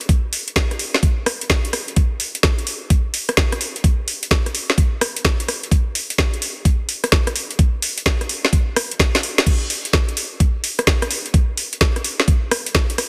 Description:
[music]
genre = UK garage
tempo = 128 BPM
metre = 4/4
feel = swing 64% on 16ths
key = none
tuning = none
[part]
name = garage drum kit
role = drums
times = 0.0-13.1 s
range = crash cymbal, hi-hat, rim click, snare drum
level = -22 LUFS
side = equal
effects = overdrive
[part]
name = electronic kick drum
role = drums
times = 0.1-12.9 s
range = none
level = -19 LUFS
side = equal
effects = overdrive
[sound]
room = light reverb, digital ambience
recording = dense, heavily limited modern master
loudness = -19 LUFS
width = mono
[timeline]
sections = 0.0-13.1 A section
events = drum fill 9.1-9.5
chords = none

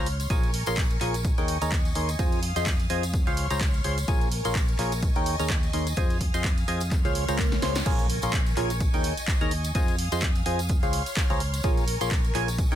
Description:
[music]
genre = piano house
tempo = 127 BPM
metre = 4/4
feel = swing 57% on 16ths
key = Bb minor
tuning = A4 = 440 Hz
[part]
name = string machine, violins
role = sustained chords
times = 0.0-12.8 s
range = Bb4 to F6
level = -35 LUFS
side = equal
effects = ensemble chorus, sidechain pumping
[part]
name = percussive organ stab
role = riff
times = 0.0-12.8 s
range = Eb4 to C6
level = -30 LUFS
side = equal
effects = chorus, phaser, sidechain pumping, tape echo
[part]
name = fingered electric bass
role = bass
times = 0.0-12.8 s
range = Bb1 to F2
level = -29 LUFS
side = equal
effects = sidechain pumping
[part]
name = punchy analog drum machine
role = drums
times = 0.1-12.8 s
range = crash cymbal, handclaps, hi-hat, snare drum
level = -33 LUFS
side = right 1 dB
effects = none
[part]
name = tambourine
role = percussion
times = 0.2-12.8 s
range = none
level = -41 LUFS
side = equal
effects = none
[part]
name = electronic kick drum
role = drums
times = 0.3-12.7 s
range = none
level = -26 LUFS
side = equal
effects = none
[part]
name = swell and impact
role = sound effects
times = 7.1-9.8 s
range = none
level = -37 LUFS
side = equal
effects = none
[sound]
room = digital ambience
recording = none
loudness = -23 LUFS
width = side -11 dB against mid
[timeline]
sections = 0.0-7.9 A section; 7.9-12.8 B section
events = swell 7.1-7.9; drum fill 7.5-7.9; band accent 7.7; drop 7.9-12.8; impact 7.9-9.8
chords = 0.3 Bbm7; 1.2 Eb7sus4; 2.2 Fm7; 3.1 Dbmaj7; 4.1 Bbm7; 5.0 Eb7sus4; 6.0 Fm7; 6.9 Dbmaj7; 7.9 Bbm7; 8.8 Eb7sus4; 9.8 Fm7; 10.7 Dbmaj7; 11.6 Bbm7

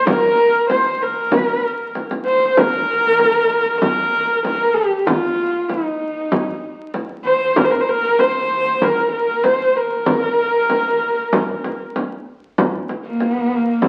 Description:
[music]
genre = mongolian traditional, Mongolian folk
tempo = 96 BPM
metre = 4/4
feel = straight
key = Bb zhi mode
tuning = A4 = 440 Hz
[part]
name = warm horsehead fiddle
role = melody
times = 0.0-13.9 s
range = Bb3 to C5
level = -18 LUFS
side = equal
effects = none
[part]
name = frame drum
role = percussion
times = 0.1-13.9 s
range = none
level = -23 LUFS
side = equal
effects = none
[sound]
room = wet large studio reverb, RT60 0.9 s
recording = very old 78 rpm record, vinyl crackle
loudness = -18 LUFS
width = mono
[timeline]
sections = 0.0-2.6 A section; 2.6-12.6 B section; 12.6-13.9 C section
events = none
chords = none

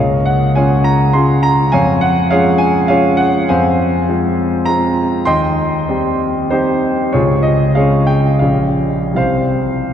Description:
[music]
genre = classical, romantic character piece for solo piano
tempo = 76-106 BPM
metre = 3/4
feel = rubato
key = F minor from 3.5 s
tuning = A4 = 440 Hz
[part]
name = clear concert grand piano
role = solo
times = 0.0-9.9 s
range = Bb1 to C6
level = -12 LUFS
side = equal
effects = none
[sound]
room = wet cathedral reverb, RT60 4.6 s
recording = dark, warm production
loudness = -12 LUFS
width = side -9 dB against mid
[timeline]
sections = 0.0-9.9 A section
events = none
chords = 0.0 Db; 1.8 Db/F; 3.5 Fm; 5.3 Cm/Eb; 7.1 Db; 8.4 Gdim/Bb; 9.2 C5

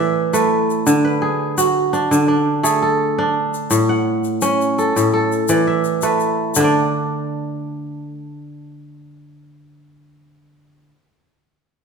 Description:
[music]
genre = west african traditional, West African string and xylophone music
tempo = 84 BPM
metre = 4/4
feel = straight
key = unclear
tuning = A4 = 441 Hz
[part]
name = kora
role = arpeggios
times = 0.0-10.9 s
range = A2 to F#5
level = -16 LUFS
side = right 1 dB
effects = none
[part]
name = egg shaker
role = percussion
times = 0.3-6.9 s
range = none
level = -26 LUFS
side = left 8 dB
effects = none
[sound]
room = wet recital hall reverb, RT60 1.4 s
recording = none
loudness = -15 LUFS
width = side -5 dB against mid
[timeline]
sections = 0.0-6.6 A section; 6.6-9.4 B section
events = none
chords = 0.0 A5; 0.9 D; 3.7 A; 6.6 N.C.

